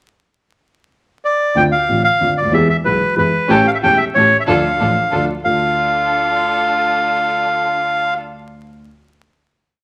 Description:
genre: tango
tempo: 185 BPM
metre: 3/4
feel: rubato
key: D minor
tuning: A4 = 440 Hz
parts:
  - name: bandoneon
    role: melody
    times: 1.2-8.1 s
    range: B4 to G5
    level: -17 LUFS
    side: equal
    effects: none
  - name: dark concert grand piano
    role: accompaniment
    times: 1.6-8.8 s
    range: E1 to A4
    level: -22 LUFS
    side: equal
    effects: none
  - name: clear double bass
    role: bass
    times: 1.6-5.6 s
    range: E1 to E2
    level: -28 LUFS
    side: equal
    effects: none
  - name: dark chamber string section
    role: stabs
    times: 3.5-8.1 s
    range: C#4 to A4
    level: -26 LUFS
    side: equal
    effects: none
room: moderate large studio reverb, RT60 1.1 s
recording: vinyl crackle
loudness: -16 LUFS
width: mono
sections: 0.6-1.6 pickup bar; 1.6-5.4 A section; 5.4-7.4 final chord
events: none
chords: 0.6 N.C.; 1.6 Dm7; 2.5 E; 3.5 A7; 4.5 Dm

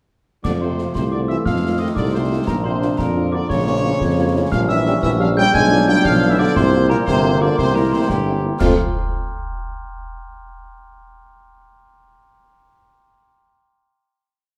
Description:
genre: military-style march for wind band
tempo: 118 BPM (dotted quarters)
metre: 6/8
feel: straight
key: F major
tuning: A4 = 440 Hz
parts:
  - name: clear trumpet section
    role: melody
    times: 0.4-8.7 s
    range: F4 to G#5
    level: -27 LUFS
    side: equal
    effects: none
  - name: clear euphonium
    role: second line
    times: 0.4-8.7 s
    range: G2 to G#3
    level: -26 LUFS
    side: equal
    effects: none
  - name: glockenspiel with soft plastic mallets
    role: second line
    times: 0.4-8.8 s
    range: G5 to G#6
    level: -28 LUFS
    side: equal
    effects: none
  - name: mellow trombone section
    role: sustained chords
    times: 0.4-8.7 s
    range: E3 to F4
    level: -26 LUFS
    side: equal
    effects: none
  - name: concert snare drum, clash cymbals and concert bass drum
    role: drums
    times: 0.4-8.8 s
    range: none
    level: -27 LUFS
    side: equal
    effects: none
  - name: clear tuba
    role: bass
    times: 0.5-8.7 s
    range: G1 to F2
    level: -22 LUFS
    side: equal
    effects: none
  - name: dark French horn section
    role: accompaniment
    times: 0.6-8.7 s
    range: G3 to G4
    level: -29 LUFS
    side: equal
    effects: none
room: wet recital hall reverb, RT60 1.3 s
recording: dark, warm production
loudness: -18 LUFS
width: mono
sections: 0.4-8.6 A section; 8.6-9.6 final chord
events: none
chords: 0.4 F; 1.5 F7; 2.5 Bb; 3.5 Bbm; 4.5 Gdim/Bb; 5.5 Bdim7; 6.6 C7sus4; 7.6 C7; 8.6 F

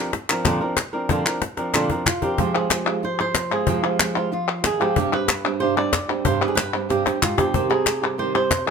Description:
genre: flamenco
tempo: 186 BPM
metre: 4/4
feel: straight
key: unclear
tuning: A4 = 440 Hz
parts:
  - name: flamenco guitar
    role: melody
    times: 0.0-8.7 s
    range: G2 to D5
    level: -23 LUFS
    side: right 1 dB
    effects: none
  - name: cajon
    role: percussion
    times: 0.1-8.7 s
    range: none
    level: -24 LUFS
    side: left 4 dB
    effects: none
  - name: palmas hand claps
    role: percussion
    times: 0.3-8.7 s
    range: none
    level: -23 LUFS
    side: left 4 dB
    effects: none
  - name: flamenco guitar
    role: stabs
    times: 2.4-8.7 s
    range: F2 to G4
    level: -24 LUFS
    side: right 7 dB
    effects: none
room: moderate studio reverb, RT60 0.8 s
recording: minimal, uncompressed stereo recording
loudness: -19 LUFS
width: side -6 dB against mid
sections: 0.0-2.4 A section; 2.4-8.7 B section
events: drum fill 1.6-2.4, 6.9-7.5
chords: 0.0 Bbadd9; 2.4 Fm; 5.0 Gsus4; 7.5 Cm

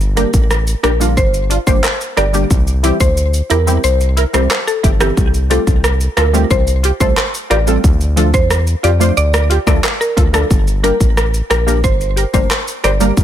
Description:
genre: dancehall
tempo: 90 BPM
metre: 4/4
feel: straight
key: unclear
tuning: A4 = 441 Hz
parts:
  - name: round analog bass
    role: bass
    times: 0.0-13.2 s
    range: G1 to F2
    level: -15 LUFS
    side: equal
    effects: none
  - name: pop drum kit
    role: drums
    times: 0.0-13.2 s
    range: handclaps, hi-hat, kick drum, rim click, shaker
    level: -15 LUFS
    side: equal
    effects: none
  - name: mallet-like synth pluck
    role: melody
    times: 0.2-12.9 s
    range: G4 to D5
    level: -19 LUFS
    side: equal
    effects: chorus, digital delay
  - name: punchy chord stab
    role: accompaniment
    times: 0.2-13.1 s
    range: D3 to C5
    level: -19 LUFS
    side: equal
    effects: chorus
room: little or no reverb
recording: none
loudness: -11 LUFS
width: side -10 dB against mid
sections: 0.0-13.2 A section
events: none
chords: 0.0 Gm; 2.5 C; 5.2 Fadd9/C; 7.8 Dm; 10.5 Gm

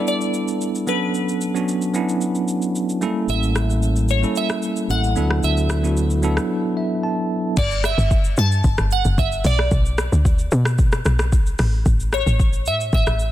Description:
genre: amapiano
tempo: 112 BPM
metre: 4/4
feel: straight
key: B minor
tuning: A4 = 436 Hz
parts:
  - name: glassy wavetable pluck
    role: melody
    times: 0.0-13.3 s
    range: B4 to A5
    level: -24 LUFS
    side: right 1 dB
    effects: chorus, ping-pong delay
  - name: bell-like tine electric piano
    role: accompaniment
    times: 0.0-7.6 s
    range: F#3 to A5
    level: -21 LUFS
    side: right 1 dB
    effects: medium stereo tremolo
  - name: afro-pop drum kit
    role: drums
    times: 0.1-13.3 s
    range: crash cymbal, hi-hat, kick drum, rim click, shaker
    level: -22 LUFS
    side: equal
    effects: overdrive, vintage 12-bit sampler grit
  - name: fingered electric bass with an envelope filter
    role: bass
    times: 3.3-6.4 s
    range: A1 to D2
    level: -19 LUFS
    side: equal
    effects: none
  - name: woody log drum bass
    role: bass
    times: 7.6-13.3 s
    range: F#1 to B2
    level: -19 LUFS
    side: equal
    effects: none
room: digital ambience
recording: dense, heavily limited modern master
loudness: -17 LUFS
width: side -13 dB against mid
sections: 0.0-7.6 A section; 7.6-13.3 B section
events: break 6.5-7.6; tine electric piano fill 6.5-7.6; drop 7.6-13.3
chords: 0.0 G69; 0.9 Bm9; 3.0 A7b9; 5.2 D69; 7.6 Gsus2; 9.4 Bm; 11.6 A

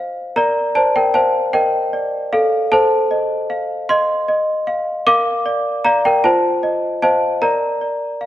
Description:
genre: classical, lullaby for celesta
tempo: 51 BPM (dotted quarters)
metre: 6/8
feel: straight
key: Bb major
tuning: A4 = 439 Hz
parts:
  - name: worn celesta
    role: solo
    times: 0.0-8.3 s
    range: F4 to D6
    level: -15 LUFS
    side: equal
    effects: none
room: moderate concert hall reverb, RT60 1.8 s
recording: none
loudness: -15 LUFS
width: side -13 dB against mid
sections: 0.0-8.3 A section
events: none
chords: 0.4 Bb; 2.7 F7/A; 5.1 Bb; 6.2 F7; 7.4 Bb

